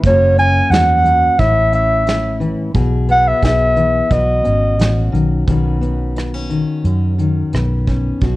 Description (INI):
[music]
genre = acoustic folk-pop ballad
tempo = 88 BPM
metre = 4/4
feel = straight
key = unclear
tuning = A4 = 436 Hz
[part]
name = fingerpicked steel-string acoustic guitar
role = accompaniment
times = 0.0-8.4 s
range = F#2 to G#4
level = -20 LUFS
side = left 2 dB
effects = none
[part]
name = vintage muted fingered electric bass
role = bass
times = 0.0-8.4 s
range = F#1 to F#2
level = -17 LUFS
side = equal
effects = none
[part]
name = soft brush drum kit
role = drums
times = 0.0-8.4 s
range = hi-hat, kick drum, rim click, snare drum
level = -20 LUFS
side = right 1 dB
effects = none
[part]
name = dark clarinet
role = melody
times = 0.1-5.1 s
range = C#5 to G#5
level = -14 LUFS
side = equal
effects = none
[sound]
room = light reverb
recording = worn, warbling old tape, cassette tape, warbly pitch drift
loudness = -12 LUFS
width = side -18 dB against mid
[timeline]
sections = 0.0-5.5 A section; 5.5-8.4 B section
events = none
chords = 0.0 F#; 1.4 A; 2.8 E/B; 4.1 Badd9